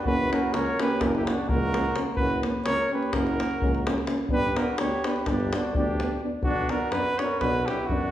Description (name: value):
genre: balkan folk, Balkan brass band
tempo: 254 BPM (eighths)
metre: 9/8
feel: straight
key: F# phrygian dominant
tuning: A4 = 440 Hz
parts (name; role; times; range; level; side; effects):
- mellow trumpet; melody; 0.0-8.1 s; F#4 to C#5; -29 LUFS; right 1 dB; none
- warm flugelhorn; second line; 0.0-8.1 s; C#4 to A#4; -33 LUFS; right 2 dB; none
- dark euphonium; accompaniment; 0.1-8.0 s; A#3 to B3; -31 LUFS; right 2 dB; none
- warm euphonium; accompaniment; 0.1-8.0 s; C#4 to D4; -31 LUFS; left 2 dB; none
- warm tuba; bass; 0.1-8.1 s; F#1 to F#2; -32 LUFS; equal; none
- davul; percussion; 0.1-8.0 s; none; -30 LUFS; left 1 dB; none
room: wet recital hall reverb, RT60 1.4 s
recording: recorded in a church or concert hall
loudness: -23 LUFS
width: side -12 dB against mid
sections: 0.0-8.1 A section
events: none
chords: 0.1 F#; 4.3 G; 6.4 Bm